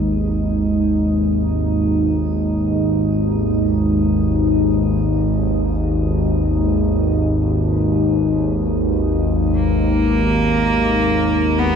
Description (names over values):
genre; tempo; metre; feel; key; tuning
ambient; free time; none; none; G# minor; A4 = 440 Hz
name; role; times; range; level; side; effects
deep dark ambient pad; sustained chords; 0.0-11.8 s; G#3 to B4; -20 LUFS; equal; chorus, built-in reverb, shimmer reverb
analog drone; drone; 0.0-11.8 s; G#1 to D#2; -18 LUFS; equal; wide subtle chorus
warm cello; melody; 9.5-11.8 s; A#3 to B3; -18 LUFS; right 2 dB; shimmer reverb, diffuse ambient delay
room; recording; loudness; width
moderate huge ambient reverb, RT60 8.1 s; none; -15 LUFS; side -7 dB against mid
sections
0.0-11.8 A section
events
none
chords
0.0 G#m; 9.6 E/G#